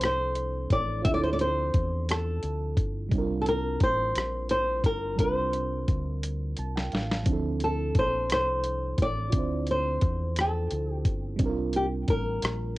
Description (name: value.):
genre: slow six-eight R&B.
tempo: 58 BPM (dotted quarters).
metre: 6/8.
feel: straight.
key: D minor.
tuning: A4 = 436 Hz.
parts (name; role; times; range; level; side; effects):
flamenco guitar; melody; 0.0-12.8 s; G4 to E5; -28 LUFS; left 1 dB; none.
mellow FM electric piano; accompaniment; 0.0-12.8 s; E3 to A5; -34 LUFS; right 4 dB; chorus, cassette tape.
deep dub fingered electric bass; bass; 0.0-12.8 s; G1 to E2; -32 LUFS; equal; none.
dusty soul sampler-style drum kit; drums; 0.0-12.6 s; hi-hat, kick drum, rim click, snare drum; -27 LUFS; equal; cassette tape.
room: light reverb.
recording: home recording on cassette.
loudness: -25 LUFS.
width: side -18 dB against mid.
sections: 0.0-12.8 A section.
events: drum fill 6.2-7.3; FM electric piano fill 6.2-7.3.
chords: 0.0 Dm9; 3.1 C9sus4.